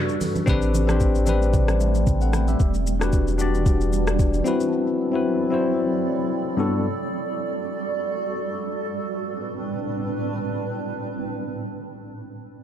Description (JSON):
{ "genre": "amapiano", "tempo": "113 BPM", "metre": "4/4", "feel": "swing 55% on 16ths", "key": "A dorian", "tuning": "A4 = 440 Hz", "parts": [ { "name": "barky tine electric piano", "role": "accompaniment", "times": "0.0-6.9 s", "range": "G2 to G5", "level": "-23 LUFS", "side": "left 4 dB", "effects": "phaser" }, { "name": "granular cloud pad", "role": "sustained chords", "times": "0.0-12.0 s", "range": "G2 to D5", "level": "-27 LUFS", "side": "right 3 dB", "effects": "built-in reverb, sidechain pumping" }, { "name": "smooth R&B drum kit", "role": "drums", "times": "0.1-4.7 s", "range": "hi-hat, kick drum, rim click, shaker", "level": "-24 LUFS", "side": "equal", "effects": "none" }, { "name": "congas", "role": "percussion", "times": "0.2-2.6 s", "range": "none", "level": "-30 LUFS", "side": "right 4 dB", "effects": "analog delay" }, { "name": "saturated sub bass", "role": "bass", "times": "0.5-4.4 s", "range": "E1 to A1", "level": "-22 LUFS", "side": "equal", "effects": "none" } ], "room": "digital ambience", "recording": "echo-heavy mix", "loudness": "-21 LUFS", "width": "side -10 dB against mid", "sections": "0.5-9.0 A section; 9.0-12.6 B section", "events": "break 0.0-0.5", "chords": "0.5 Am11; 2.6 Em7; 4.5 D13/F#; 6.6 Gmaj7sus2; 9.0 Am11", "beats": "| 0.47 1.01 1.54 2.07 | 2.60 3.13 3.66 4.19 | 4.72 5.25 5.79 6.32 | 6.85 7.38 7.91 8.44 | 8.97 9.50 10.03 10.56 | 11.10 11.63" }